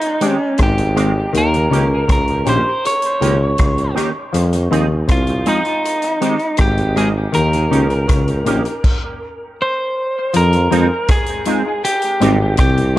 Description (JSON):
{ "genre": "roots reggae", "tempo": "80 BPM", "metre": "4/4", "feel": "straight", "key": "unclear", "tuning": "A4 = 439 Hz", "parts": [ { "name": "lightly driven lead guitar", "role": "melody", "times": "0.0-13.0 s", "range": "Eb4 to Db5", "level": "-19 LUFS", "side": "equal", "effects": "dub echo" }, { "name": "vintage drum kit", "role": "drums", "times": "0.0-12.9 s", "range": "crash cymbal, hi-hat, kick drum, rim click", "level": "-19 LUFS", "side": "equal", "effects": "analog delay" }, { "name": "electric guitar with an envelope filter", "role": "accompaniment", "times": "0.2-13.0 s", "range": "Eb3 to Ab4", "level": "-24 LUFS", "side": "right 5 dB", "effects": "analog chorus, dub echo" }, { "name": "percussive organ stab", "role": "stabs", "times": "0.2-13.0 s", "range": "Ab3 to G4", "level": "-23 LUFS", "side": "left 4 dB", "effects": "chorus" }, { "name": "mellow clav", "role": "riff", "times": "0.6-12.8 s", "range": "Ab2 to F3", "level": "-22 LUFS", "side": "left 3 dB", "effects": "none" }, { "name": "clear tuba", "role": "bass", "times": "0.6-13.0 s", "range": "Ab1 to F2", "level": "-17 LUFS", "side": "equal", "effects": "none" } ], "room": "light reverb, small room reverb", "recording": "echo-heavy mix", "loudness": "-14 LUFS", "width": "side -15 dB against mid", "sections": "0.0-10.3 A section; 10.3-13.0 B section", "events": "stop 8.8-10.3", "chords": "0.0 Abmaj7; 1.3 Eb7; 4.3 Fm7; 5.8 Abmaj7; 7.3 Eb7; 10.3 Fm7; 11.8 Abmaj7" }